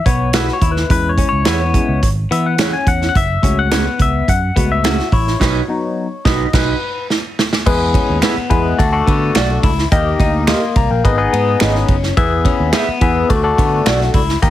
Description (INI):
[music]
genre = uptempo 1960s-style soul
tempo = 106 BPM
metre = 4/4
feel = straight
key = E major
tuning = A4 = 439 Hz
[part]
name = barky tine electric piano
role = accompaniment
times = 0.0-14.5 s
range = F#3 to C6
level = -18 LUFS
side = left 4 dB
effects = overdrive, phaser
[part]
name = electric guitar through a small old amp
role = riff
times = 0.1-14.4 s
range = A#3 to F#4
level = -22 LUFS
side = left 6 dB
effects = none
[part]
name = vintage muted picked electric bass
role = bass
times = 0.1-14.5 s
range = F#1 to E3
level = -18 LUFS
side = right 1 dB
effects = none
[part]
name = natural country drum kit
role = drums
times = 0.1-14.5 s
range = crash cymbal, hi-hat, kick drum, ride cymbal, snare drum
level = -17 LUFS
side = right 1 dB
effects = none
[part]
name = mellow electric guitar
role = stabs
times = 0.3-14.0 s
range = A3 to E5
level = -22 LUFS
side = right 6 dB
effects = none
[part]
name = finger snaps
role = percussion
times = 0.3-14.0 s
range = none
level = -25 LUFS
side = right 5 dB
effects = none
[sound]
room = light reverb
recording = heavily compressed radio sound, multiband compression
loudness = -13 LUFS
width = side -13 dB against mid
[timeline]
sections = 0.0-7.7 A section; 7.7-14.5 B section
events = tine electric piano solo 0.0-7.7; band accent 5.4-7.7; drum fill 7.1-7.7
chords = 0.0 E5; 0.9 C#m; 3.2 F#madd9; 5.4 B; 7.7 E; 8.8 D; 9.9 D#; 11.0 G#m; 12.2 E; 13.3 D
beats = 0.34 | 0.90 1.47 2.03 2.59 | 3.15 3.72 4.28 4.84 | 5.41 5.97 6.54 7.10 | 7.66 8.23 8.79 9.36 | 9.92 10.48 11.05 11.61 | 12.18 12.74 13.30 13.87 | 14.43